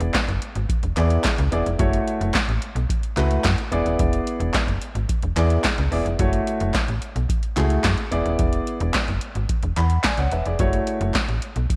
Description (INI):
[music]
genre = early-eighties boogie funk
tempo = 109 BPM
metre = 4/4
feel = straight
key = unclear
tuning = A4 = 440 Hz
[part]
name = warm grand piano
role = accompaniment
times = 0.0-11.1 s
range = A3 to B5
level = -27 LUFS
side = equal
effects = none
[part]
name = slap-like FM bass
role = bass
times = 0.0-11.7 s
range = D#1 to F#2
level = -24 LUFS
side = equal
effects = none
[part]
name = electro analog drum machine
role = drums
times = 0.0-11.8 s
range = handclaps, hi-hat, kick drum, snare drum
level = -26 LUFS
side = equal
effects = none
[part]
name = group handclap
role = percussion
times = 0.1-11.3 s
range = none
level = -37 LUFS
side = equal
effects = none
[sound]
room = moderate echo chamber reverb, RT60 2.0 s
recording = none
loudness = -22 LUFS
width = mono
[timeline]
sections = 0.0-11.8 A section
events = none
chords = 0.0 E7; 1.8 F#m7; 3.7 E7; 6.2 F#m7; 8.1 E7; 10.6 F#m7